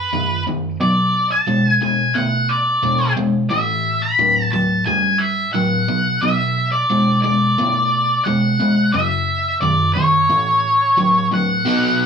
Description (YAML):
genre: rock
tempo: 88 BPM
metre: 4/4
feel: straight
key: B dorian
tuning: A4 = 440 Hz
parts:
  - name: octave-fuzz lead guitar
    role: melody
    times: 0.0-12.1 s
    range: B4 to B5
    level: -17 LUFS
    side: left 1 dB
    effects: distortion
  - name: crunchy overdriven guitar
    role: riff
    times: 0.0-12.1 s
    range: F#2 to B3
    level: -19 LUFS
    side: equal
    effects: spring reverb
room: wet studio reverb, RT60 0.6 s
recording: band playing live in one room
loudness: -15 LUFS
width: side -6 dB against mid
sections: 0.0-11.7 A section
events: none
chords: 0.0 F#5; 0.8 Bm; 3.5 A5; 5.9 Bm; 8.9 F#5; 10.3 A